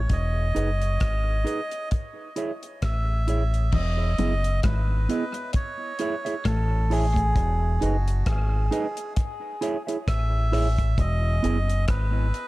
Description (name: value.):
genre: dub reggae.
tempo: 66 BPM.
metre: 4/4.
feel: swing 57% on 16ths.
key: E major.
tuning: A4 = 442 Hz.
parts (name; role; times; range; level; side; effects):
melodica; melody; 0.0-12.5 s; F#4 to E5; -31 LUFS; right 1 dB; dub echo.
deep dub fingered electric bass; bass; 0.0-12.3 s; E1 to A1; -23 LUFS; equal; none.
damped 70s drum kit; drums; 0.1-12.5 s; crash cymbal, hi-hat, kick drum, rim click; -28 LUFS; equal; none.
mellow electric guitar; accompaniment; 0.5-11.6 s; B3 to E5; -31 LUFS; right 3 dB; dub echo.
clean electric guitar; riff; 3.7-6.7 s; E2 to A2; -34 LUFS; left 4 dB; none.
room: light reverb, small room ambience.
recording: dark, warm production.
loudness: -22 LUFS.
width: side -19 dB against mid.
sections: 0.0-3.7 A section; 3.7-12.5 B section.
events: none.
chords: 0.1 Emaj7; 1.9 Amaj7; 3.7 Emaj7; 5.5 Amaj7; 7.4 Emaj7; 9.2 Amaj7; 11.0 Emaj7.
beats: | 0.10 1.01 1.92 2.83 | 3.73 4.64 5.55 6.45 | 7.36 8.27 9.17 10.08 | 10.98 11.89.